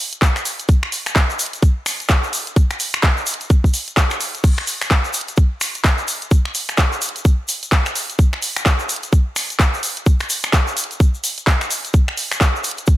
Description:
house; 128 BPM; 4/4; swing 60% on 16ths
house drum kit; drums; 0.1-13.0 s; crash cymbal, finger snaps, handclaps, hi-hat; -20 LUFS; equal; overdrive
egg shaker; percussion; 0.1-13.0 s; -26 LUFS; left 3 dB
electronic kick drum; drums; 0.2-13.0 s; -14 LUFS; equal
digital ambience; -16 LUFS; side -15 dB against mid
0.0-13.0 A section
0.22 | 0.69 1.16 1.63 2.10 | 2.56 3.03 3.50 3.97 | 4.44 4.91 5.38 5.84 | 6.31 6.78 7.25 7.72 | 8.19 8.66 9.13 9.60 | 10.06 10.53 11.00 11.47 | 11.94 12.41 12.88

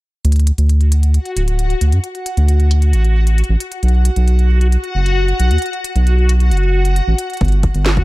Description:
IDM; 134 BPM; 4/4; straight; D major; A4 = 440 Hz
round analog bass; bass; 0.2-8.0 s; D1 to F#2; -12 LUFS; equal
organic electronic drum kit; drums; 0.2-8.0 s; hi-hat, snare drum; -25 LUFS; equal
backwards swelling texture; texture; 1.2-8.0 s; F#4 to F#5; -22 LUFS; left 2 dB; built-in reverb
electronic kick drum; drums; 7.4-8.0 s; -18 LUFS; equal
little or no reverb; dark, warm production; -12 LUFS; side -19 dB against mid
0.2-8.0 A section
filter sweep on analog synth bass 0.2-8.0
0.2 D; 3.8 B5; 7.4 N.C.
| 0.25 0.69 1.14 1.59 | 2.04 2.49 2.93 3.38 | 3.83 4.28 4.72 5.17 | 5.62 6.07 6.52 6.96 | 7.41 7.86

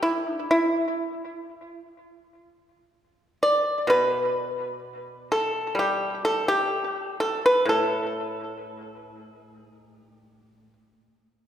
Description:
chinese traditional, Chinese solo plucked strings; 53-64 BPM; 4/4; rubato; A shang mode; A4 = 442 Hz
pipa; solo; 0.0-10.8 s; A2 to D5; -23 LUFS; equal; tape echo
wet recital hall reverb, RT60 1.8 s; heard from further back in the room; -22 LUFS; side -10 dB against mid
0.0-11.5 A section
| 0.03 1.01 1.98 2.94 | 3.88 4.82 5.76 6.71 | 7.67 8.67 9.68

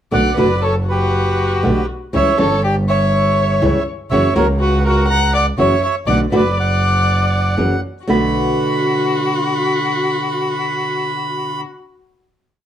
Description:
tango; 121 BPM; 4/4; rubato; B minor; A4 = 442 Hz
bandoneon; melody; 0.1-11.6 s; F#4 to B5; -19 LUFS; right 3 dB
warm violin; second line; 0.1-11.6 s; F#4 to F#5; -21 LUFS; left 6 dB
flamenco guitar; accompaniment; 0.1-11.7 s; B2 to F#4; -18 LUFS; equal
clear double bass; bass; 0.1-8.3 s; F#1 to C#2; -18 LUFS; equal
moderate studio reverb, RT60 0.8 s; -14 LUFS; side -10 dB against mid
0.1-8.1 A section; 8.1-12.1 final chord
0.1 Bm7; 2.1 C#dim; 4.1 F#7; 6.1 Bm7; 7.6 F#7; 8.1 Bm7
| 0.12 0.63 1.14 1.64 | 2.14 2.63 3.13 3.62 | 4.11 4.60 5.09 5.58 | 6.08 6.57 7.07 7.58 | 8.08 8.59 9.08 9.57 | 10.07 10.56 11.05 11.55

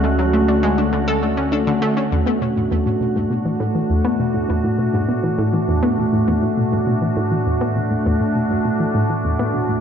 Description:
ambient, sequencer-driven space music; 101 BPM; 4/4; straight; A4 = 438 Hz
evolving wavetable pad; sustained chords; 0.0-9.8 s; A2 to F#4; -19 LUFS; equal; chorus, built-in reverb
analog pluck; riff; 0.0-9.8 s; E2 to A4; -20 LUFS; equal; chorus, cassette tape, ping-pong delay
round analog bass; bass; 0.0-2.1 s; D2; -23 LUFS; equal
wind-like tuned noise texture; texture; 0.0-2.1 s; F#5; -34 LUFS; right 1 dB; built-in reverb
wet concert hall reverb, RT60 2.4 s; dark, warm production, nothing above 7.4 kHz, faint mains hum; -16 LUFS; side -8 dB against mid
0.0-2.1 A section; 2.1-9.8 B section
filter sweep on synth arpeggio sound 2.1-9.8
0.0 Dmaj7; 2.1 E7sus4
0.33 0.93 1.52 | 2.12 2.71 3.30 3.90 | 4.49 5.09 5.68 6.27 | 6.87 7.46 8.06 8.65 | 9.24

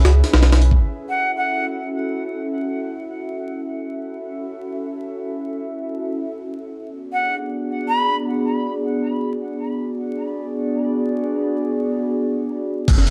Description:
drum and bass, jungle; free time; F# minor; A4 = 440 Hz
warbly tape-like pad; sustained chords; 0.0-13.1 s; B3 to E5; -26 LUFS; equal; chorus, built-in reverb
saturated sub bass; bass; 0.0-0.8, 12.9-13.1 s; F#1 to C#2; -16 LUFS; equal
breakbeat sampler-style drum kit; drums; 0.0-0.8, 12.9-13.1 s; crash cymbal, hi-hat, kick drum, snare drum; -19 LUFS; equal; studio reverb
jazz flute; melody; 1.1-1.7, 7.1-8.2 s; F#5 to B5; -27 LUFS; equal; dub echo
light reverb, digital ambience; dark, warm production, vinyl crackle; -22 LUFS; mono
0.8-12.9 A section
0.0 C#m7; 0.8 F#m7; 6.8 G#m7b5
free time

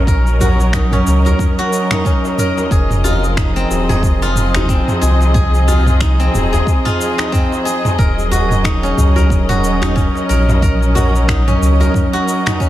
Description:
organic downtempo; 91 BPM; 4/4; swing 57% on 16ths; Eb dorian; A4 = 443 Hz
muted studio string section; sustained chords; 0.0-12.7 s; F3 to Eb5; -19 LUFS; right 1 dB; sidechain pumping
steel-string zither; arpeggios; 0.0-12.7 s; C4 to Bb4; -19 LUFS; equal; tape echo
warm sub bass; bass; 0.0-11.9 s; Eb1 to Db2; -14 LUFS; equal
deep house drum kit; drums; 0.1-12.7 s; cabasa, finger snaps, toms; -21 LUFS; equal; small room ambience
electronic kick drum; drums; 0.1-12.7 s; -16 LUFS; equal; small room ambience
djembe; percussion; 0.3-12.6 s; -25 LUFS; left 1 dB
light reverb, small room ambience; -12 LUFS; side -14 dB against mid
0.0-12.7 A section
0.0 Ebm7; 2.7 Fm7
| 0.08 0.73 1.39 2.05 | 2.71 3.37 4.03 4.69 | 5.35 6.01 6.67 7.33 | 7.99 8.65 9.31 9.97 | 10.62 11.29 11.94 12.60

